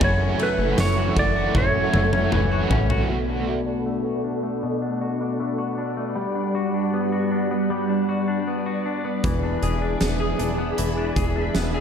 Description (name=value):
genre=dream pop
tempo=78 BPM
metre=4/4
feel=straight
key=B minor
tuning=A4 = 440 Hz
part: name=clean lap steel guitar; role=melody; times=0.0-2.7 s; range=B4 to D5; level=-25 LUFS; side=right 1 dB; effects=ping-pong delay
part: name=biting overdriven guitar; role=accompaniment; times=0.0-3.6 s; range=F#2 to F#4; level=-28 LUFS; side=right 6 dB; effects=tremolo, ensemble chorus
part: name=string machine, full ensemble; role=sustained chords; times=0.0-11.8 s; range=G3 to C#6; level=-26 LUFS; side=right 1 dB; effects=ensemble chorus, low-pass filter
part: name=direct-recorded clean electric guitar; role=arpeggios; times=0.0-11.8 s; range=F#2 to G#4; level=-26 LUFS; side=left 3 dB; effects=lush chorus, low-pass filter, ping-pong delay
part: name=plucky analog bass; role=bass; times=0.0-3.0, 9.2-11.8 s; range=E1 to A1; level=-25 LUFS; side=equal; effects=none
part: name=huge arena drum kit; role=drums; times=0.0-3.1, 9.2-11.7 s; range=hi-hat, kick drum, ride cymbal, snare drum, tambourine, toms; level=-26 LUFS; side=equal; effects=none
part: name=shimmering bell with halo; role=texture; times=0.0-0.6 s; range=G#5 to B5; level=-40 LUFS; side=left 4 dB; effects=none
room=light reverb, small room ambience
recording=dark, warm production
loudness=-20 LUFS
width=side -7 dB against mid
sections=0.0-3.1 A section; 3.1-11.8 B section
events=drum fill 1.5-3.1; filter sweep 3.1-11.8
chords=0.0 F#m7; 3.1 Bm7; 6.2 Gmaj7; 9.2 E7